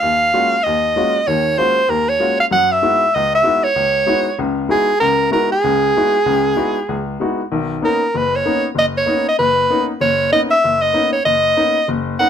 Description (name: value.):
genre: jazz.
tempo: 192 BPM.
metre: 4/4.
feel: swing 61% on 8ths.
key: B major from 7.5 s.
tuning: A4 = 438 Hz.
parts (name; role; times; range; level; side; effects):
bright soprano saxophone; melody; 0.0-12.3 s; Ab4 to F#5; -14 LUFS; right 1 dB; none.
clear upright piano; accompaniment; 0.0-12.3 s; F#1 to Gb4; -20 LUFS; left 4 dB; none.
room: light reverb.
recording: close, detailed microphones.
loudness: -14 LUFS.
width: side -8 dB against mid.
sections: 0.0-7.5 A section; 7.5-12.3 B section.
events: none.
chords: 0.0 Ab13sus4; 2.5 Gb13sus4; 7.5 Bmaj9.